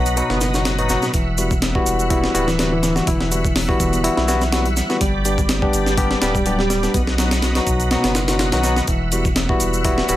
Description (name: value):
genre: breakbeat, breaks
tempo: 124 BPM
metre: 4/4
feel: swing 54% on 16ths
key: E minor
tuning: A4 = 440 Hz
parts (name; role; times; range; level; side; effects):
- overdriven tonewheel organ; sustained chords; 0.0-10.2 s; F#4 to B5; -27 LUFS; equal; chorus vibrato, slow rotary speaker, sidechain pumping
- barky reed electric piano; riff; 0.0-10.2 s; A2 to G4; -24 LUFS; equal; tape echo
- barky tine electric piano; stabs; 0.0-10.2 s; F#3 to G4; -22 LUFS; left 2 dB; tape echo
- saturated sub bass; bass; 0.0-10.2 s; D1 to B1; -23 LUFS; equal; none
- breakbeat sampler-style drum kit; drums; 0.1-10.2 s; hi-hat, kick drum, snare drum; -21 LUFS; equal; studio reverb
- shaker; drums; 0.1-10.2 s; none; -29 LUFS; right 3 dB; studio reverb
room: little or no reverb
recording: none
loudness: -16 LUFS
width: side -14 dB against mid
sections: 0.0-10.2 A section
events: none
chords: 0.0 B; 1.1 Emadd9; 5.0 G; 6.9 B; 8.9 Emadd9